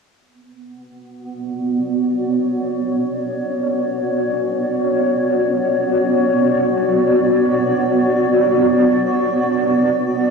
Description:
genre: ambient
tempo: free time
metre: none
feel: none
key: B minor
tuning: A4 = 444 Hz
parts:
  - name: granular cloud pad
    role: solo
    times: 1.3-10.3 s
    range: B3 to D5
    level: -15 LUFS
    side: equal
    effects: built-in reverb, tape echo
room: wet small room reverb, RT60 0.5 s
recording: home recording on cassette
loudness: -15 LUFS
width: side -5 dB against mid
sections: 0.2-10.3 A section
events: none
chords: 0.2 Bmadd9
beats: free time

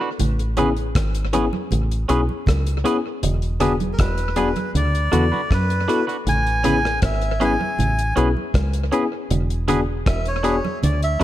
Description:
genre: lovers rock reggae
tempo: 79 BPM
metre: 4/4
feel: straight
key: A major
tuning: A4 = 438 Hz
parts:
  - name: twangy electric guitar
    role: stabs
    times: 0.0-11.2 s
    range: C#4 to B4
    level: -27 LUFS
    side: right 5 dB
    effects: none
  - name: deep dub fingered electric bass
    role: bass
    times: 0.2-11.2 s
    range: E1 to F#2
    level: -21 LUFS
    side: equal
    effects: none
  - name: damped 70s drum kit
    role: drums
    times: 0.2-11.2 s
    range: hi-hat, kick drum, rim click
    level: -25 LUFS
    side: equal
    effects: gated reverb, tape echo
  - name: congas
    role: percussion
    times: 0.2-11.0 s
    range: none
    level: -28 LUFS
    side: right 5 dB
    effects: none
  - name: tine electric piano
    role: accompaniment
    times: 0.6-11.2 s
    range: B3 to A4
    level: -24 LUFS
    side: left 4 dB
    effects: overdrive
  - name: melodica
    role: melody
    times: 3.9-11.2 s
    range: Bb4 to G#5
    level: -25 LUFS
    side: equal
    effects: tape echo
room: light reverb, small room ambience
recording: none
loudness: -18 LUFS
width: side -13 dB against mid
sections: 0.0-11.2 A section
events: none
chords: 0.2 Amaj9; 3.2 E7; 4.8 D6; 6.3 Amaj9; 9.3 E7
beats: | 0.19 0.95 1.71 2.47 | 3.23 3.99 4.75 5.51 | 6.27 7.03 7.79 8.55 | 9.30 10.06 10.82

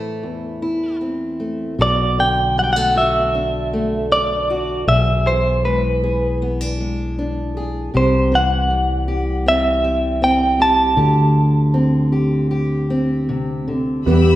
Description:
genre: acoustic folk-pop ballad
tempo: 78 BPM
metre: 4/4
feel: straight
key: unclear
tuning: A4 = 439 Hz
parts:
  - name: direct-recorded clean electric guitar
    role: melody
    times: 0.0-13.3 s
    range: B4 to A5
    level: -17 LUFS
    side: right 1 dB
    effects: tremolo
  - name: fingerpicked steel-string acoustic guitar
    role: accompaniment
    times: 0.0-14.4 s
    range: E2 to G#4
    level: -22 LUFS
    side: left 1 dB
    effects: none
  - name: fingered electric bass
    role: bass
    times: 1.8-14.4 s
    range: B1 to E2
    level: -19 LUFS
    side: equal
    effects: none
  - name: mellow clarinet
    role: second line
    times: 14.1-14.4 s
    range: G4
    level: -17 LUFS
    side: left 3 dB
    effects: none
  - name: dark studio string section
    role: sustained chords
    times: 14.1-14.4 s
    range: G4 to E6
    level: -25 LUFS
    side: left 5 dB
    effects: none
  - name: felt-muted upright piano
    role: arpeggios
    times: 14.1-14.4 s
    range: B3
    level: -19 LUFS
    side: right 10 dB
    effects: none
room: wet recital hall reverb, RT60 1.6 s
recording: recorded in a church or concert hall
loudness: -16 LUFS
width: side -14 dB against mid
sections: 0.0-1.8 A section; 1.8-14.1 B section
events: none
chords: 0.0 Am; 1.8 Bm7; 4.9 E7/B; 7.9 C; 11.0 D7sus4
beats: 0.22 1.00 | 1.78 2.56 3.34 4.11 | 4.88 5.64 6.41 7.18 | 7.93 8.69 9.46 10.21 | 10.97 11.74 12.51 13.29 | 14.06

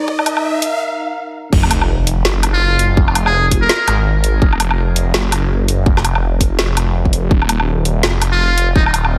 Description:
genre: half-time drum and bass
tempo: 166 BPM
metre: 4/4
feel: swing 59% on 16ths, half-time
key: unclear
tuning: A4 = 441 Hz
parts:
  - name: deep dark ambient pad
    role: sustained chords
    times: 0.0-1.5 s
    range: Eb4 to Bb5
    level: -29 LUFS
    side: equal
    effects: chorus, built-in reverb, sidechain pumping
  - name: riser and sub drop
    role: sound effects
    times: 0.0-3.0 s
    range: none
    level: -23 LUFS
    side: equal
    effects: none
  - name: electronic kick drum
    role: drums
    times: 0.1-8.8 s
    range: none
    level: -15 LUFS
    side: equal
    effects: high-pass filter on kick, high-pass filter on room
  - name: drum and bass drum kit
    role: drums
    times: 0.2-9.1 s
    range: crash cymbal, hi-hat, snare drum, woodblock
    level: -21 LUFS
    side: equal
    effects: high-pass filter on hats, high-pass filter on perc, high-pass filter on snare, high-pass filter on cymbals, high-pass filter on room
  - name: phased detuned saw bass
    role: bass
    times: 1.5-9.2 s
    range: Eb1 to Ab1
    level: -18 LUFS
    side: equal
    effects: phaser, tube saturation
  - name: trumpet with metal mute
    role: melody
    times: 2.5-4.0, 8.3-8.9 s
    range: Eb4 to Bb4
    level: -20 LUFS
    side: equal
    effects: diffuse ambient delay
room: moderate lush hall reverb, RT60 1.6 s, digital ambience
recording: dreamy mix soaked in reverb, high-pass filter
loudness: -15 LUFS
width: mono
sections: 0.0-1.5 A section; 1.5-9.2 B section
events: build-up 0.0-1.5; riser 0.0-0.8; filter sweep 0.0-1.5; break 0.8-1.5; drop 1.5-9.2; impact 1.5-3.0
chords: 0.0 Eb5; 1.5 N.C.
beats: | 0.08 0.44 0.80 1.17 | 1.53 1.89 2.25 2.61 | 2.97 3.33 3.70 4.06 | 4.42 4.78 5.14 5.50 | 5.87 6.23 6.59 6.95 | 7.31 7.67 8.03 8.39 | 8.76 9.12

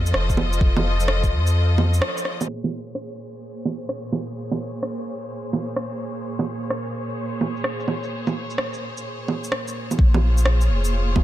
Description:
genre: future garage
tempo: 128 BPM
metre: 4/4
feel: swing 66% on 16ths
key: Bb minor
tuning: A4 = 439 Hz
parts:
  - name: clear symphonic string section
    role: sustained chords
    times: 0.0-11.2 s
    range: Bb2 to Eb5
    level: -29 LUFS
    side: equal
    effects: vintage 12-bit sampler grit, sidechain pumping
  - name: warm sub bass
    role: bass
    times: 0.0-2.0, 10.0-11.2 s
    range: F1 to F2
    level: -19 LUFS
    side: equal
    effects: sidechain pumping
  - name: electronic shaker, rim click and bongos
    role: drums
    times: 0.1-11.2 s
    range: none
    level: -26 LUFS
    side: right 3 dB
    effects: overdrive, low-pass filter on perc, low-pass filter on snare
  - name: electronic kick drum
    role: drums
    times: 0.3-1.3, 10.0-11.2 s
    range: none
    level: -18 LUFS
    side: equal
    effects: overdrive
room: light reverb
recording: dark, warm production, low-pass filter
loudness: -21 LUFS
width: side -13 dB against mid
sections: 0.0-2.5 A section; 2.5-10.0 B section; 10.0-11.2 C section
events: kick drops out 1.6-2.5; band accent 2.0; filter sweep on drum 2.5-10.0; filter sweep 2.5-10.0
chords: 0.0 F7; 2.5 Bbm7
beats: 0.14 | 0.61 1.08 1.55 2.02 | 2.49 2.96 3.42 3.89 | 4.36 4.83 5.30 5.77 | 6.24 6.71 7.17 7.64 | 8.11 8.58 9.05 9.52 | 9.99 10.46 10.93

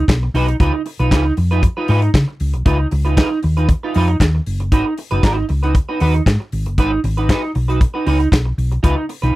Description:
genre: disco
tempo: 117 BPM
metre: 4/4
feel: straight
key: G# dorian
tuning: A4 = 442 Hz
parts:
  - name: clean electric guitar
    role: accompaniment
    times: 0.0-9.3 s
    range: D#4 to B4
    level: -20 LUFS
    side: right 2 dB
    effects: analog chorus
  - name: hollow-body short-scale fingered electric bass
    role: bass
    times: 0.1-9.3 s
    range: F#1 to C#3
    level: -16 LUFS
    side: equal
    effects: none
  - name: modern studio drum kit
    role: drums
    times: 0.1-9.3 s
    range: handclaps, hi-hat, kick drum, snare drum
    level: -14 LUFS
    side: equal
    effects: none
room: little or no reverb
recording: dry, close 1970s-style studio recording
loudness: -14 LUFS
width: side -17 dB against mid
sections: 0.0-9.4 A section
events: none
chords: 0.0 G#m7 (rootless); 0.6 C#9; 4.7 G#m7; 8.8 C#9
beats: 0.09 | 0.60 1.12 1.63 2.15 | 2.66 3.18 3.69 4.21 | 4.72 5.24 5.75 6.26 | 6.78 7.29 7.81 8.32 | 8.84

